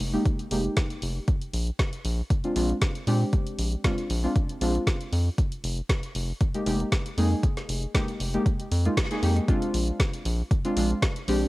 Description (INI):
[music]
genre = deep house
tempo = 117 BPM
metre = 4/4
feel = swing 53% on 16ths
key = unclear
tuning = A4 = 438 Hz
[part]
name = round analog bass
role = bass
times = 0.0-11.4 s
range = F1 to Bb2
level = -26 LUFS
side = equal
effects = sidechain pumping
[part]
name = deep house drum kit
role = drums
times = 0.0-11.4 s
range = hi-hat, snare drum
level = -32 LUFS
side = equal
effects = cassette tape
[part]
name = deep mellow chord stab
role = stabs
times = 0.1-11.5 s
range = Ab3 to Ab4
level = -28 LUFS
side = equal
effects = chorus, sidechain pumping, cassette tape, analog delay
[part]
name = electronic kick drum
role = drums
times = 0.3-11.1 s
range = none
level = -24 LUFS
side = equal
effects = cassette tape
[sound]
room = little or no reverb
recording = home recording on cassette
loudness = -24 LUFS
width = side -19 dB against mid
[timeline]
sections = 0.0-9.5 A section; 9.5-11.5 B section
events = band accent 9.0; drop 9.5-11.5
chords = 0.0 Fm11; 1.3 Bb7; 5.1 Fm11; 9.5 Bb7